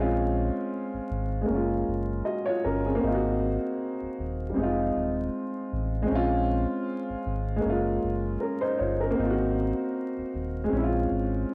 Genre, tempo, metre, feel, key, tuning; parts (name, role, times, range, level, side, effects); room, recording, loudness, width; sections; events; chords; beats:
lo-fi hip hop; 78 BPM; 4/4; swing 56% on 16ths; Bb minor; A4 = 439 Hz
dark upright piano; accompaniment; 0.0-11.5 s; G3 to Eb5; -29 LUFS; equal; cassette tape, low-pass filter
sub bass with octave; bass; 0.0-11.4 s; Eb1 to Bb1; -33 LUFS; equal
light reverb, small room reverb; home recording on cassette, vinyl crackle; -28 LUFS; mono
0.0-11.5 A section
0.0 Bbm9; 1.5 Gbmaj9; 3.0 Ab9; 4.6 Fm7; 6.1 Bbm9; 7.6 Gbmaj9; 9.2 Ab9; 10.7 Bbm7
0.71 1.48 2.24 | 3.01 3.78 4.55 5.32 | 6.09 6.86 7.63 8.40 | 9.17 9.94 10.71 11.47